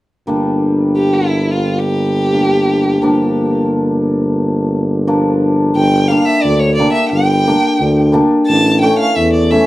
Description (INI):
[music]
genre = klezmer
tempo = free time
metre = none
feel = none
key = G minor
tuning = A4 = 441 Hz
[part]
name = hammered dulcimer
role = accompaniment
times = 0.3-9.7 s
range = E3 to D4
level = -15 LUFS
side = left 1 dB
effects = none
[part]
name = warm tuba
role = bass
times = 0.3-9.6 s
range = G1 to E2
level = -15 LUFS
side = equal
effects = none
[part]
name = warm violin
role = melody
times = 1.0-3.6, 5.8-9.7 s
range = E4 to A5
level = -16 LUFS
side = right 1 dB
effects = none
[sound]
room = wet studio reverb, RT60 0.5 s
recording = heard from further back in the room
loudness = -11 LUFS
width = side -17 dB against mid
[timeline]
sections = 0.3-5.7 A section; 5.7-9.7 B section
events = none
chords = 0.3 Gm; 3.0 Bb/G; 5.7 Gm; 8.5 A